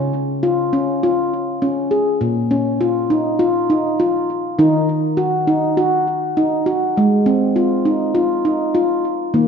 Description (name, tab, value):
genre	world meditative, meditative tuned percussion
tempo	101 BPM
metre	4/4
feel	straight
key	unclear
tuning	A4 = 440 Hz
part	handpan	solo	0.0-9.5 s	Bb2 to Ab4	-15 LUFS	equal	ping-pong delay
room	wet echo chamber reverb, RT60 1.7 s, small room ambience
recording	dark, warm production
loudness	-15 LUFS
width	side -6 dB against mid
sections	0.0-9.3 A section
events	none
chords	0.0 Db; 2.2 Bbm; 4.6 Ebm; 7.0 Ab